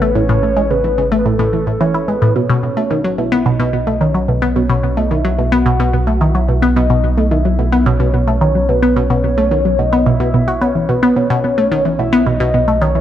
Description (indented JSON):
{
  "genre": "ambient, sequencer-driven space music",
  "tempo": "109 BPM",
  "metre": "4/4",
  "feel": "straight",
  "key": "unclear",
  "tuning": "A4 = 440 Hz",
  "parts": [
    { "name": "soft octave-layered synth lead", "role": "melody", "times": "0.0-13.0 s", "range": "A4 to F#5", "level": "-18 LUFS", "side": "equal", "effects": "chorus, phaser, analog delay" },
    { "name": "resonant blip pluck", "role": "riff", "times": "0.0-13.0 s", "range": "A2 to F#4", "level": "-14 LUFS", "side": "equal", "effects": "phaser, analog delay" },
    { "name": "round analog bass", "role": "bass", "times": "0.0-13.0 s", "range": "A1 to B1", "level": "-19 LUFS", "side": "equal", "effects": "none" }
  ],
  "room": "moderate plate reverb, RT60 2.5 s",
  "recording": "none",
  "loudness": "-12 LUFS",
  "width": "side -11 dB against mid",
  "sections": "0.0-13.0 A section",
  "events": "none",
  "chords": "0.0 A; 2.4 Bsus4"
}